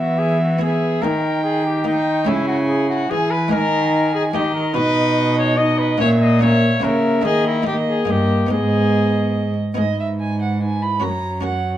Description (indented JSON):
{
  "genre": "classical, renaissance-style consort dance",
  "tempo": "145 BPM",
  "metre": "3/4",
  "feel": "straight",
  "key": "G# minor",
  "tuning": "A4 = 440 Hz",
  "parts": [
    { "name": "warm cornet", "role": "melody", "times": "0.0-11.8 s", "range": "D#4 to D#5", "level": "-22 LUFS", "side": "left 2 dB", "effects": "none" },
    { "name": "dark violin", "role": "second line", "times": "0.0-11.8 s", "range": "D#5 to B5", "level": "-25 LUFS", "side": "right 3 dB", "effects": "none" },
    { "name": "buff-stop harpsichord", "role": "accompaniment", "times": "0.0-11.8 s", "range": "F#2 to A#4", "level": "-25 LUFS", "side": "equal", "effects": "none" },
    { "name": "mellow trombone", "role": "accompaniment", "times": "0.0-11.8 s", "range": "A#3 to F#4", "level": "-22 LUFS", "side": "left 1 dB", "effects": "none" },
    { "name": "rich cello", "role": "bass", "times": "0.0-11.8 s", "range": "F#2 to E3", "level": "-20 LUFS", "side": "right 1 dB", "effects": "none" }
  ],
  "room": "wet stone room reverb, RT60 0.9 s",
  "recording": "heard from further back in the room, faint mains hum",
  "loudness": "-16 LUFS",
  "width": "side -12 dB against mid",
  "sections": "0.0-9.8 A section; 9.8-11.8 B section",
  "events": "none",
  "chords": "0.0 E; 1.0 D#; 2.3 C#m; 3.5 D#sus4; 4.3 D#; 4.8 B; 6.0 A#dim; 7.2 D#sus4; 7.7 D#; 8.5 G#m; 11.0 F#",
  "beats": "0.20 0.62 | 1.03 1.45 1.86 | 2.27 2.69 3.10 | 3.52 3.93 4.34 | 4.76 5.17 5.59 | 6.00 6.42 6.83 | 7.24 7.66 8.08 | 8.50 8.93 9.35 | 9.77 10.19 10.61 | 11.03 11.44"
}